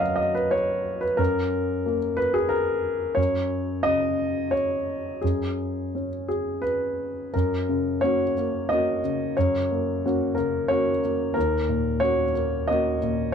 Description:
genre	neoclassical minimalist piano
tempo	89 BPM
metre	3/4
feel	rubato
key	F# major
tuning	A4 = 438 Hz
part	warm grand piano	solo	0.0-13.3 s	D#2 to E#5	-22 LUFS	equal	none
room	moderate small room reverb, RT60 0.6 s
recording	dark, warm production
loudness	-22 LUFS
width	side -7 dB against mid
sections	0.0-7.3 A section; 7.3-13.3 B section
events	none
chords	0.0 F#maj13; 3.2 C#sus2/F#; 7.3 F#; 11.4 D#m7

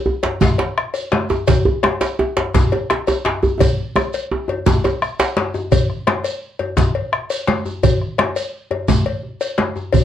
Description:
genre	west african traditional, West African drum ensemble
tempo	113 BPM (dotted quarters)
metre	12/8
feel	straight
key	none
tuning	none
part	djembe	percussion	0.1-5.4 s	none	-19 LUFS	right 2 dB	none
part	congas	percussion	0.2-10.0 s	none	-22 LUFS	right 5 dB	none
part	cowbell	percussion	0.2-10.0 s	none	-23 LUFS	left 6 dB	none
part	djembe	percussion	0.2-10.0 s	none	-22 LUFS	left 3 dB	none
part	bombo	percussion	0.4-10.0 s	none	-20 LUFS	left 1 dB	none
part	shekere	percussion	0.4-10.0 s	none	-26 LUFS	right 3 dB	none
room	wet small room reverb, RT60 0.6 s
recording	worn, warbling old tape, cassette tape, warbly pitch drift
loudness	-16 LUFS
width	side -10 dB against mid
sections	0.0-5.7 A section; 5.7-10.0 B section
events	drum fill 3.6-5.7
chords	none

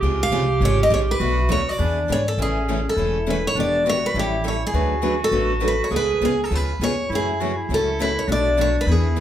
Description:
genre	acoustic string swing (jazz manouche)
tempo	204 BPM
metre	4/4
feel	swing 59% on 8ths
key	A major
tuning	A4 = 440 Hz
part	clear clarinet	second line	0.0-9.2 s	C#4 to G#4	-26 LUFS	right 4 dB	none
part	picked steel-string acoustic guitar	accompaniment	0.0-9.2 s	B2 to B4	-27 LUFS	left 4 dB	none
part	picked steel-string acoustic guitar	accompaniment	0.0-9.2 s	B2 to B4	-31 LUFS	right 7 dB	none
part	upright bass	bass	0.0-9.2 s	E1 to G#2	-24 LUFS	equal	none
part	picked steel-string acoustic guitar	melody	0.2-9.2 s	G4 to E#5	-22 LUFS	left 1 dB	none
room	moderate large studio reverb, RT60 0.9 s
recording	band playing live in one room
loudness	-18 LUFS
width	side -11 dB against mid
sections	0.0-2.4 A section; 2.4-9.2 B section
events	none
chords	0.0 C#maj7; 1.2 Bm7; 1.8 E7; 2.4 Amaj7; 3.6 Em7; 4.2 A7; 4.7 D6; 5.9 C#7; 7.1 F#m9; 8.3 Bm7

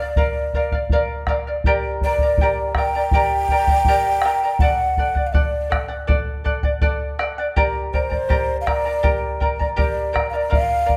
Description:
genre	andean folk, Andean ensemble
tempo	81 BPM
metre	4/4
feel	straight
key	G minor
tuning	A4 = 441 Hz
part	breathy mellow large quena	melody	0.0-11.0 s	C5 to G5	-23 LUFS	equal	none
part	charango	accompaniment	0.0-11.0 s	G4 to Bb5	-25 LUFS	equal	none
part	bombo	percussion	0.2-11.0 s	none	-24 LUFS	equal	none
room	moderate recital hall reverb, RT60 1.3 s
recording	close, detailed microphones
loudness	-20 LUFS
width	mono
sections	0.0-11.0 A section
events	none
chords	0.0 Bb; 1.7 Gm; 4.6 D; 7.6 Gm

